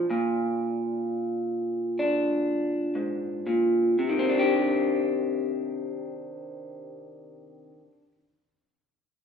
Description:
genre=folk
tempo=57-67 BPM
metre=4/4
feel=straight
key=C minor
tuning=A4 = 440 Hz
part: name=electric guitar through a small old amp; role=accompaniment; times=0.0-8.1 s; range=Ab2 to G4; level=-25 LUFS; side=equal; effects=phaser
room=wet recital hall reverb, RT60 1.4 s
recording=minimal, uncompressed stereo recording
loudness=-24 LUFS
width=side -7 dB against mid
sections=0.0-4.0 A section; 4.0-8.2 B section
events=slowing down 0.0-4.0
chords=0.0 Bb; 4.0 Cmadd9

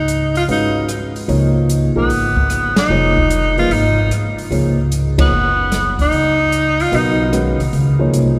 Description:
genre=modal jazz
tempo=149 BPM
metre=4/4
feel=swing 67% on 8ths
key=Db mixolydian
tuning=A4 = 440 Hz
part: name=clear tenor saxophone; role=melody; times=0.0-7.3 s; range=Cb4 to F4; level=-20 LUFS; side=equal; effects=none
part: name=upright bass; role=bass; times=0.0-8.4 s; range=F1 to Ab2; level=-20 LUFS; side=equal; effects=none
part: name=open jazz drum kit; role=drums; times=0.1-8.3 s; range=hi-hat, kick drum, ride cymbal, rim click, snare drum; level=-24 LUFS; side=equal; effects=none
part: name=warm concert grand piano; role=accompaniment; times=0.5-8.4 s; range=Eb3 to F5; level=-23 LUFS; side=equal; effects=none
room=wet cathedral reverb, RT60 5.7 s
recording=recorded in a church or concert hall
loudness=-16 LUFS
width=mono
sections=0.0-8.4 A section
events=band accent 2.7, 5.1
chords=0.0 Db13; 4.5 Cbadd9

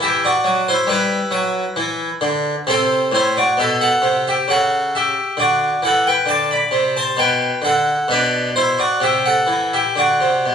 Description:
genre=classical, baroque-style suite movement for harpsichord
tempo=66 BPM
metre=3/4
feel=rubato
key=unclear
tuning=A4 = 441 Hz
part: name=harpsichord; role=solo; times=0.0-10.5 s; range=A2 to B5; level=-15 LUFS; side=equal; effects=none
room=wet stone room reverb, RT60 1.0 s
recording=recorded on a phone in the room, club ambience, compression, nothing above 10.8 kHz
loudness=-15 LUFS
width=side -7 dB against mid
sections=0.0-10.5 A section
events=none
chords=0.0 Em; 2.7 Am; 4.5 C#dim; 5.4 D; 7.2 G/B; 8.1 Bmadd11; 9.0 Am7/C; 9.9 D

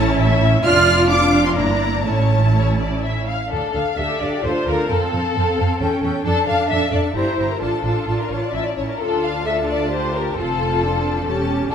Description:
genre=quick classical-period movement for string orchestra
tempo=132 BPM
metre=3/4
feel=rubato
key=D minor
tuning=A4 = 440 Hz
part: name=clear symphonic violin section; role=melody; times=0.0-11.7 s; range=F5 to F6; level=-25 LUFS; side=equal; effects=none
part: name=rich symphonic violin section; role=second line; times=0.0-11.7 s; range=A4 to F5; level=-22 LUFS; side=left 3 dB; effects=none
part: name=rich symphonic viola section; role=accompaniment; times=0.0-11.7 s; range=C4 to A4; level=-24 LUFS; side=equal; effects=none
part: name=warm symphonic cello section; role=bass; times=0.0-11.7 s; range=A3 to A4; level=-24 LUFS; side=right 2 dB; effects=none
part: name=warm symphonic double bass section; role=bass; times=0.0-11.7 s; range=E1 to F2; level=-22 LUFS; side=right 2 dB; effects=none
room=moderate scoring stage reverb, RT60 1.9 s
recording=none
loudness=-16 LUFS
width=side -8 dB against mid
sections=0.0-3.5 A section; 3.5-11.7 B section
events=none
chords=0.0 A; 0.6 Dm/F; 1.6 Em7b5/G; 2.1 A; 3.5 Dm; 4.9 F; 5.8 A7; 6.3 Dm/F; 7.2 Edim; 7.6 Dm/A; 8.5 A; 9.0 Dm; 10.4 F; 11.3 A7/E

